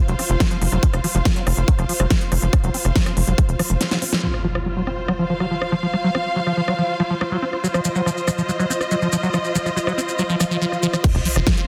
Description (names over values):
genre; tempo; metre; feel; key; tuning
psychedelic trance; 141 BPM; 4/4; straight; unclear; A4 = 440 Hz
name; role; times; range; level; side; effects
warm studio string section; texture; 0.0-11.7 s; F4 to F5; -28 LUFS; equal; sidechain pumping
liquid acid bass; riff; 0.1-11.6 s; Eb3 to C4; -25 LUFS; equal; phaser, sidechain pumping, tape echo
tight sequencer bass; bass; 0.1-3.8, 11.1-11.4 s; F1; -22 LUFS; equal; none
big-room dance drum kit; drums; 0.1-11.7 s; crash cymbal, hi-hat, rim click, snare drum; -27 LUFS; equal; soft clipping on snare, low-pass filter on snare, low-pass filter on hats, low-pass filter on cymbals
electronic kick drum; drums; 0.4-3.5, 11.0-11.6 s; none; -21 LUFS; equal; none
impact, swell and sub drop; sound effects; 4.2-5.9, 10.4-11.7 s; none; -31 LUFS; equal; none
maracas; percussion; 7.6-11.0 s; none; -32 LUFS; equal; none
room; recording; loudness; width
moderate lush hall reverb, RT60 1.6 s, digital ambience; dense, heavily limited modern master; -20 LUFS; mono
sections
0.0-4.2 A section; 4.2-11.0 B section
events
filter sweep on acid bass 0.0-4.2, 4.2-11.0; drum fill 3.8-4.2; band accent 4.1; impact 4.2-5.9, 11.0-11.7; filter sweep on drum 4.2-11.0; swell 10.4-11.0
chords
0.0 F5